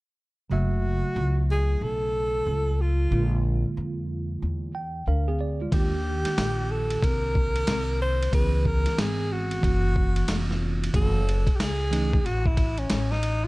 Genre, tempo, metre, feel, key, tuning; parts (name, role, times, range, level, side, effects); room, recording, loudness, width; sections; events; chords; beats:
hip hop, jazz-hop; 92 BPM; 4/4; swing 64% on 16ths; A4 = 435 Hz
breathy alto saxophone; melody; 0.5-13.5 s; C#4 to B#4; -29 LUFS; equal
tine electric piano; accompaniment; 0.5-12.2 s; C#3 to G5; -31 LUFS; right 3 dB; fast stereo tremolo
upright bass; bass; 0.5-13.5 s; E#1 to E#2; -26 LUFS; equal
boom bap sampler-style drum kit; drums; 5.7-13.4 s; hi-hat, kick drum, ride cymbal, snare drum; -27 LUFS; equal
digital ambience; dark, warm production; -23 LUFS; side -21 dB against mid
0.5-10.9 A section; 10.9-13.5 B section
tine electric piano fill 4.4-5.7
0.5 F#m7; 3.1 A#7; 5.7 D#maj7; 8.3 C#m7; 9.6 F#7; 10.9 F#m7
| 0.51 1.16 1.81 2.46 | 3.12 3.77 4.42 5.07 | 5.73 6.38 7.03 7.68 | 8.33 8.99 9.64 10.29 | 10.94 11.60 12.25 12.90